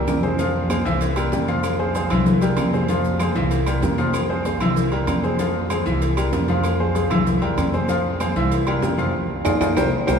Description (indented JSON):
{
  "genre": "latin, salsa",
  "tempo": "192 BPM",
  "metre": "4/4",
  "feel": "straight",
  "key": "F minor",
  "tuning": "A4 = 443 Hz",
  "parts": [
    { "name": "bright grand piano", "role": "accompaniment", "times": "0.0-10.2 s", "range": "E3 to F5", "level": "-23 LUFS", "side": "equal", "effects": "none" },
    { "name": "upright bass", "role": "bass", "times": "0.0-10.2 s", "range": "C2 to F2", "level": "-23 LUFS", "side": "equal", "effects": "none" },
    { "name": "bongos and cowbell", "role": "percussion", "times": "0.1-10.2 s", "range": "none", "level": "-30 LUFS", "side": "left 4 dB", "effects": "none" },
    { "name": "claves", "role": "percussion", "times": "0.1-10.2 s", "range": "none", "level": "-38 LUFS", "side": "right 2 dB", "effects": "none" },
    { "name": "congas", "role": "percussion", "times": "0.1-10.2 s", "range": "none", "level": "-26 LUFS", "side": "left 1 dB", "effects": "none" },
    { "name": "maracas", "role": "percussion", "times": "0.1-10.2 s", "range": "none", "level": "-43 LUFS", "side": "right 6 dB", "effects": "none" },
    { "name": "timbales and agogo bells", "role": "percussion", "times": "0.1-10.2 s", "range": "none", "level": "-28 LUFS", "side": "right 3 dB", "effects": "none" }
  ],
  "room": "wet cathedral reverb, RT60 4.7 s",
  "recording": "recorded in a church or concert hall",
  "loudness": "-18 LUFS",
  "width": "side -6 dB against mid",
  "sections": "0.4-10.2 A section",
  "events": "drum fill 0.0-0.4, 9.1-10.2; band accent 9.1-10.2",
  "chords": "0.4 Fm; 1.0 C7; 1.6 Fm; 2.3 C7; 2.9 Fm; 3.5 C7; 4.1 Fm; 4.8 C7; 5.4 Fm; 6.0 C7; 6.6 Fm; 7.3 C7; 7.9 Fm; 8.5 C7; 9.1 Fm7"
}